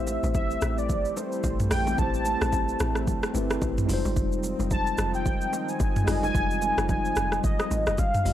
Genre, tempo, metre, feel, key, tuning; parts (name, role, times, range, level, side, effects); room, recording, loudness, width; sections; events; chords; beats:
amapiano; 110 BPM; 4/4; swing 58% on 16ths; A4 = 439 Hz
warm velvety synth lead; melody; 0.0-8.3 s; C5 to A5; -29 LUFS; equal; chorus, tape echo
tine electric piano; accompaniment; 0.0-8.3 s; G3 to Eb5; -31 LUFS; left 1 dB; medium stereo tremolo
lush unison pad; sustained chords; 0.0-8.3 s; Eb3 to Eb4; -35 LUFS; right 1 dB; chorus, sidechain pumping
deep log drum bass; bass; 0.0-8.3 s; F1 to A1; -30 LUFS; equal
afro-pop drum kit; drums; 0.1-8.3 s; hi-hat, kick drum, rim click, shaker, toms; -28 LUFS; equal; overdrive
bongos and congas; percussion; 0.1-8.3 s; -37 LUFS; right 2 dB
digital ambience; dry, gritty hardware recording, cassette tape; -23 LUFS; side -12 dB against mid
0.0-8.3 A section
0.0 Am9; 3.9 Fm9
0.35 0.89 1.44 | 1.98 2.53 3.08 3.62 | 4.17 4.71 5.26 5.80 | 6.35 6.89 7.44 7.98